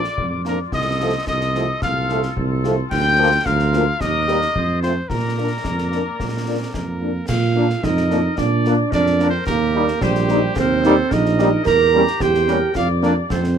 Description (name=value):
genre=military-style march for wind band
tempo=110 BPM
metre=2/4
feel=straight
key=Bb major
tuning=A4 = 439 Hz
part: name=clear cornet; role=melody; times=0.0-13.6 s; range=G4 to Bb5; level=-25 LUFS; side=equal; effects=none
part: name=bright wooden piccolo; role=second line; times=0.0-7.0 s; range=Bb5 to G6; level=-24 LUFS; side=left 6 dB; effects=none
part: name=warm woodwind section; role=second line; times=0.0-13.4 s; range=F4 to D5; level=-27 LUFS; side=left 3 dB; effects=none
part: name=mellow tuba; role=bass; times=0.0-13.6 s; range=Bb1 to Bb2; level=-21 LUFS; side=right 3 dB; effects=none
part: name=concert snare drum, concert bass drum and clash cymbals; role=drums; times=0.0-13.6 s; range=none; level=-28 LUFS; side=left 1 dB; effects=none
part: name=mellow French horn section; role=accompaniment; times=0.5-13.1 s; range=F3 to Bb4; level=-23 LUFS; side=left 5 dB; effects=none
part: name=dark trombone section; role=sustained chords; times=0.5-13.1 s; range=F3 to Eb4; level=-22 LUFS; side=right 1 dB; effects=none
part: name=mellow euphonium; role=second line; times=5.7-13.6 s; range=G3 to Bb4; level=-20 LUFS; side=right 5 dB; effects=none
room=little or no reverb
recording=close, detailed microphones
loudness=-16 LUFS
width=side -8 dB against mid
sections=0.0-7.3 A section; 7.3-13.6 B section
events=none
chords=0.0 Bb; 0.7 F7/C; 2.9 Bb/D; 4.0 Eb; 4.6 F; 5.1 Bb; 9.5 Eb; 11.7 Edim7; 12.8 Bb/F